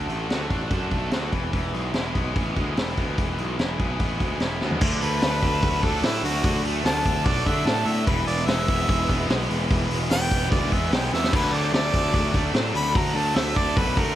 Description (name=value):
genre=classic rock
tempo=147 BPM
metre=4/4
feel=straight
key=unclear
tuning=A4 = 440 Hz
part: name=distorted electric guitar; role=riff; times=0.0-14.2 s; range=E2 to G#4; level=-30 LUFS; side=right 11 dB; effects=overdrive
part: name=tight distorted guitar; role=riff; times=0.0-14.2 s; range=D3 to F#4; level=-30 LUFS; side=left 11 dB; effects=distortion
part: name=fuzz picked electric bass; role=bass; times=0.0-14.1 s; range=E1 to D3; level=-27 LUFS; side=equal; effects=overdrive
part: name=vintage drum kit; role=drums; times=0.1-14.1 s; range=crash cymbal, hi-hat, kick drum, snare drum, toms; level=-25 LUFS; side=equal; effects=none
part: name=bright tonewheel organ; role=sustained chords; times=4.8-14.2 s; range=F#3 to D5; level=-37 LUFS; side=right 1 dB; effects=none
part: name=clear harmonica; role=melody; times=5.0-14.2 s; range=E4 to B5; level=-26 LUFS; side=equal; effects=slapback echo
room=light reverb, small room reverb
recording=none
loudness=-21 LUFS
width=side -12 dB against mid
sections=0.0-4.8 A section; 4.8-14.2 B section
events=drum fill 4.6, 11.1; harmonica solo 4.8-14.2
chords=0.0 D; 1.3 E; 4.8 D; 8.1 E; 11.3 D